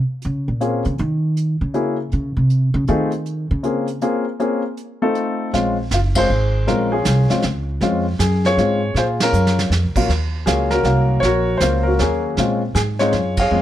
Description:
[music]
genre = jazz piano trio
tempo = 158 BPM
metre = 3/4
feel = swing 64% on 8ths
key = Bb minor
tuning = A4 = 440 Hz
[part]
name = upright bass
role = bass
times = 0.2-13.6 s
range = Gb1 to Eb3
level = -19 LUFS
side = right 1 dB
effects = none
[part]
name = vintage brush drum kit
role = drums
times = 0.2-13.6 s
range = brushed snare drum, crash cymbal, hi-hat, kick drum, ride cymbal, snare drum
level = -25 LUFS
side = right 3 dB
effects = none
[part]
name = warm upright piano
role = melody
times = 0.6-13.6 s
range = Gb3 to F5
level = -19 LUFS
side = left 2 dB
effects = plate reverb
[sound]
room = light reverb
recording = none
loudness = -16 LUFS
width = side -12 dB against mid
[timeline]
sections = 0.0-5.5 A section; 5.5-13.6 B section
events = upright bass solo 0.0-5.5; band accent 6.1, 9.1, 13.3; drum fill 9.3-9.7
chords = 0.0 Bbm7; 1.0 N.C.; 2.1 F7(no3) (rootless); 3.3 Bbm7; 5.2 F7; 5.5 Bbm7; 10.1 Ebm7; 12.4 Bbm7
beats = 0.22 0.60 | 0.98 1.36 1.74 | 2.12 2.50 2.88 | 3.26 3.63 4.01 | 4.39 4.77 5.15 | 5.53 5.91 6.29 | 6.67 7.05 7.44 | 7.82 8.20 8.58 | 8.96 9.34 9.72 | 10.10 10.48 10.86 | 11.24 11.62 12.00 | 12.38 12.76 13.14 | 13.52

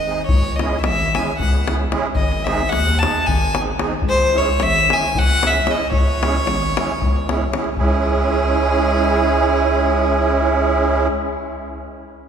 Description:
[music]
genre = balkan folk, Balkan wedding band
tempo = 225 BPM (eighths)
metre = 7/8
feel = straight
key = C# harmonic minor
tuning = A4 = 439 Hz
[part]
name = clear violin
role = melody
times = 0.0-11.1 s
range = G#4 to A5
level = -21 LUFS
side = left 1 dB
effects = none
[part]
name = musette accordion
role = accompaniment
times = 0.1-11.1 s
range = G#3 to G#4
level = -20 LUFS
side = right 3 dB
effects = none
[part]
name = saturated sub bass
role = bass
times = 0.3-11.1 s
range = G#1 to D#2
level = -22 LUFS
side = equal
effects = none
[part]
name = davul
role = percussion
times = 0.3-8.1 s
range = none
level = -22 LUFS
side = left 2 dB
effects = none
[sound]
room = wet church reverb, RT60 3.6 s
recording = recorded in a church or concert hall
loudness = -15 LUFS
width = side -7 dB against mid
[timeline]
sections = 0.0-7.8 A section; 7.8-11.5 B section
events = none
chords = 0.3 C#m; 2.2 G#; 4.0 C#m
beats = 0.04 | 0.31 0.57 0.84 1.11 1.37 1.64 1.90 | 2.17 2.44 2.70 2.97 3.23 3.50 3.77 | 4.03 4.30 4.57 4.83 5.10 5.37 5.63 | 5.90 6.17 6.43 6.70 6.97 7.24 7.50 | 7.77 8.04 8.30 8.57 8.84 9.11 9.37 | 9.64 9.91 10.18 10.45 10.71 10.98

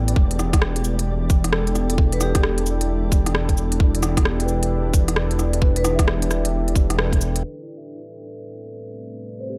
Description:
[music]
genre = future garage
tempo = 132 BPM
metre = 4/4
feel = swing 63% on 16ths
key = unclear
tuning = A4 = 442 Hz
[part]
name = muted felt-like synth keys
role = accompaniment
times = 0.0-9.6 s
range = B3 to E5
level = -33 LUFS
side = equal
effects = chorus, sidechain pumping, dub echo
[part]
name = deep dark ambient pad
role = sustained chords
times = 0.0-9.6 s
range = A3 to B4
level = -33 LUFS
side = equal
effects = chorus, built-in reverb, sidechain pumping
[part]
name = dark detuned saw bass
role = bass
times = 0.0-7.4 s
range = E1 to A1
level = -24 LUFS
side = equal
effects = sidechain pumping
[part]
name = flickering grainy texture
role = texture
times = 0.0-7.5 s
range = D5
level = -43 LUFS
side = equal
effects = none
[part]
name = organic electronic drum kit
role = drums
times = 0.1-7.4 s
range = cabasa, hi-hat, rim click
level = -28 LUFS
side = equal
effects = none
[part]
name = electronic kick drum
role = drums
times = 0.2-7.2 s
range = none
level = -20 LUFS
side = equal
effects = none
[part]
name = vibraphone with medium mallets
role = melody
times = 2.1-2.6, 5.8, 9.4-9.6 s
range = G4 to C5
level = -31 LUFS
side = equal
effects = tape echo
[sound]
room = little or no reverb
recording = low-pass filter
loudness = -20 LUFS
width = mono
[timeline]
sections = 0.0-7.4 A section; 7.4-9.6 B section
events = band accent 7.0; filter sweep on ambient pad 7.4-9.6; filter sweep 7.4-9.6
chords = 0.2 Em7; 7.4 Am9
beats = | 0.17 0.62 1.07 1.53 | 1.98 2.44 2.89 3.35 | 3.80 4.26 4.71 5.17 | 5.62 6.08 6.53 6.98 | 7.44 7.89 8.35 8.80 | 9.26

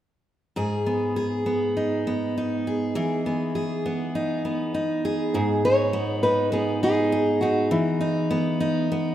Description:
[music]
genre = pop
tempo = 101 BPM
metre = 4/4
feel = straight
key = G# minor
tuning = A4 = 440 Hz
[part]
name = picked steel-string acoustic guitar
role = accompaniment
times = 0.6-9.1 s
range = G#2 to G#4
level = -23 LUFS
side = equal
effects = none
[part]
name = nylon-string guitar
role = melody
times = 5.3-8.9 s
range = E4 to C#5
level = -24 LUFS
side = equal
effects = none
[sound]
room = wet lush hall reverb, RT60 2.6 s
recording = rough home demo mix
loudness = -22 LUFS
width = side -11 dB against mid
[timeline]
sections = 0.6-5.3 A section; 5.3-9.1 B section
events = none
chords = 0.6 G#m; 2.9 Emaj7; 5.3 G#m; 7.7 Emaj7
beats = | 0.56 1.15 1.75 2.35 | 2.94 3.54 4.14 4.73 | 5.33 5.92 6.52 7.11 | 7.71 8.30 8.89

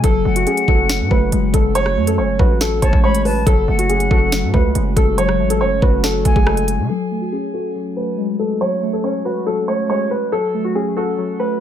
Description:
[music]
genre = hip hop, drill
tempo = 140 BPM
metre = 4/4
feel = half-time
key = F# minor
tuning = A4 = 436 Hz
[part]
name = dark grand piano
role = melody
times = 0.0-11.6 s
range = F#4 to C#5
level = -20 LUFS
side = left 1 dB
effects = low-pass filter, tape echo
[part]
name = warbly lo-fi synth keys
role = accompaniment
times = 0.0-11.6 s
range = F#3 to F#4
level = -21 LUFS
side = equal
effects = chorus, low-pass filter
[part]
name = hard-hitting 808-style bass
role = bass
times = 0.0-6.9 s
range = F#1 to C#3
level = -19 LUFS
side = equal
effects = none
[part]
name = drill drum kit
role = drums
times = 0.0-6.8 s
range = hi-hat, kick drum, rim click, snare drum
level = -17 LUFS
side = equal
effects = none
[part]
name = silver concert flute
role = second line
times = 0.3-6.9 s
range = F#5 to B5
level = -25 LUFS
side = left 4 dB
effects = tape echo
[sound]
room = little or no reverb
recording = none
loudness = -15 LUFS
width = side -10 dB against mid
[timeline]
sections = 0.0-6.9 A section; 6.9-11.6 B section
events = filter sweep 6.9-11.6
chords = 0.0 F#madd9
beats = | 0.04 0.47 0.89 1.32 | 1.75 2.18 2.61 3.04 | 3.47 3.89 4.32 4.75 | 5.18 5.61 6.04 6.47 | 6.89 7.32 7.75 8.18 | 8.61 9.04 9.47 9.89 | 10.32 10.75 11.18

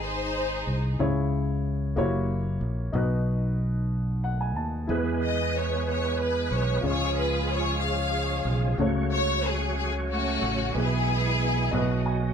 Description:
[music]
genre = gospel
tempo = 62 BPM (dotted quarters)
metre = 6/8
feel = straight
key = E major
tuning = A4 = 439 Hz
[part]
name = clear studio string section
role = melody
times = 0.0-1.0, 5.2-12.1 s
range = A3 to E#5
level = -28 LUFS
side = left 1 dB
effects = none
[part]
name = dark upright piano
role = accompaniment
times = 0.0-12.3 s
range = G#2 to A5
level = -32 LUFS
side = left 2 dB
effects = none
[part]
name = fingered electric bass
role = bass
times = 0.0-12.3 s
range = F#1 to E2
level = -27 LUFS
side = equal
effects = none
[part]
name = bright tonewheel organ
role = sustained chords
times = 4.9-12.3 s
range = B2 to D#5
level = -31 LUFS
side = right 3 dB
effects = fast rotary speaker, chorus vibrato
[sound]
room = moderate studio reverb, RT60 0.7 s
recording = band playing live in one room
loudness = -24 LUFS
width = side -7 dB against mid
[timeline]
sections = 0.0-12.3 A section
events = upright piano fill 3.9-4.9, 11.7-12.3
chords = 0.0 G#; 1.0 C#m; 2.0 F#7b9; 2.9 B; 4.9 E; 6.8 C#; 8.8 F#m/C#; 10.8 E/B; 11.7 B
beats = 0.02 | 0.99 1.97 | 2.94 3.92 | 4.89 5.87 | 6.84 7.82 | 8.79 9.77 | 10.75 11.73

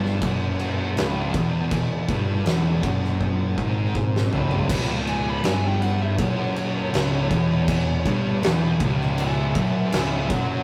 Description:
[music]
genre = stoner and doom metal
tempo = 80 BPM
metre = 4/4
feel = straight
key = unclear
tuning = A4 = 440 Hz
[part]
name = thick fuzz guitar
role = riff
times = 0.0-10.6 s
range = C#2 to G#2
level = -27 LUFS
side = equal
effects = distortion
[part]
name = thick fuzz guitar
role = riff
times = 0.0-10.6 s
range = C#2 to G#2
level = -32 LUFS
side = equal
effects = distortion
[part]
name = fuzz picked electric bass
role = bass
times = 0.0-10.6 s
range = C#1 to G#1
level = -32 LUFS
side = equal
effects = overdrive
[part]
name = oversized low-tuned drum kit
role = drums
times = 0.1-10.5 s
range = crash cymbal, kick drum, snare drum, toms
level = -28 LUFS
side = equal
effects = none
[part]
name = fuzz lead guitar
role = melody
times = 5.1-10.6 s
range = C#5 to B5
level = -33 LUFS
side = equal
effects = distortion
[sound]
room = light reverb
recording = rough rehearsal-room recording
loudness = -23 LUFS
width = mono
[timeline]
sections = 0.0-4.7 A section; 4.7-10.6 B section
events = drum fill 3.2-4.7; lead electric guitar solo 4.7-10.6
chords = 0.0 C#m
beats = 0.22 0.97 | 1.72 2.46 3.21 3.96 | 4.71 5.45 6.20 6.94 | 7.69 8.44 9.18 9.93

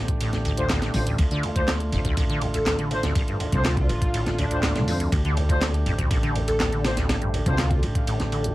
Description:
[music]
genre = breakbeat, breaks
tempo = 122 BPM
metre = 4/4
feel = straight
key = D minor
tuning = A4 = 440 Hz
[part]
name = percussive tonewheel organ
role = sustained chords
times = 0.0-8.5 s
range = D3 to G4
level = -32 LUFS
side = right 1 dB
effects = overdrive, sidechain pumping
[part]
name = upright bass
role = bass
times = 0.0-8.5 s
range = A1 to F2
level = -26 LUFS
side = equal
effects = none
[part]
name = breakbeat sampler-style drum kit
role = drums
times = 0.1-8.4 s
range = hi-hat, kick drum, ride cymbal, snare drum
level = -26 LUFS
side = equal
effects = none
[part]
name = garage drum kit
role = drums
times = 0.1-8.5 s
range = handclaps, hi-hat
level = -33 LUFS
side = equal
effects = none
[part]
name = deep acid bass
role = riff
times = 0.2-8.5 s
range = C2 to D3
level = -28 LUFS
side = equal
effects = ensemble chorus
[part]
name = mellow brass ensemble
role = stabs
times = 0.6-7.6 s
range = D4 to C5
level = -32 LUFS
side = left 1 dB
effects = dub echo
[part]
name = airy dreamy lead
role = melody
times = 2.5-7.7 s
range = D4 to A4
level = -32 LUFS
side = equal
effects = chorus, telephone sound, dub echo
[sound]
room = light reverb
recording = vinyl crackle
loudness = -21 LUFS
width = side -17 dB against mid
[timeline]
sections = 0.0-8.5 A section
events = none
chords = 0.0 Dm7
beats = 0.20 0.70 | 1.19 1.68 2.17 2.66 | 3.16 3.65 4.14 4.63 | 5.12 5.62 6.11 6.60 | 7.09 7.58 8.07

